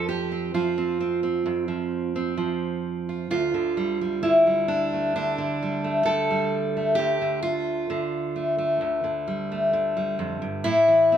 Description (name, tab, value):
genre	folk, solo fingerstyle acoustic guitar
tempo	66 BPM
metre	4/4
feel	straight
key	D minor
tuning	A4 = 440 Hz
part	fingerpicked steel-string acoustic guitar	solo	0.0-11.2 s	D2 to A4	-22 LUFS	right 1 dB	none
room	light reverb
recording	none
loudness	-22 LUFS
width	side -9 dB against mid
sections	0.0-11.2 A section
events	none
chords	0.0 F5; 3.3 Dm; 10.6 A5